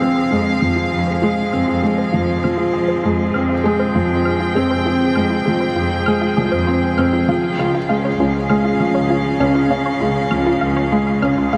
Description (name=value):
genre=piano and strings electronica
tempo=99 BPM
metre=4/4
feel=straight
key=F minor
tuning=A4 = 440 Hz
part: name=muted string quartet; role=sustained chords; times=0.0-11.6 s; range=Db3 to G5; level=-24 LUFS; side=equal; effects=none
part: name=unison pluck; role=arpeggios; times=0.0-11.6 s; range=F4 to F6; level=-27 LUFS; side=equal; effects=analog delay
part: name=felt-muted upright piano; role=riff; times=0.0-11.6 s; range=F3 to F4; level=-20 LUFS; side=equal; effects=analog delay
part: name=warm studio cello section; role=bass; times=0.3-11.6 s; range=C2 to F2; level=-26 LUFS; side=equal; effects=none
room=wet lush hall reverb, RT60 3.2 s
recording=dreamy mix soaked in reverb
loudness=-17 LUFS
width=mono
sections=0.0-11.6 A section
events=none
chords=0.0 Fm; 7.3 Db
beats=| 0.01 0.62 1.23 1.83 | 2.44 3.04 3.65 4.26 | 4.86 5.47 6.08 6.68 | 7.29 7.89 8.50 9.11 | 9.71 10.32 10.92 11.53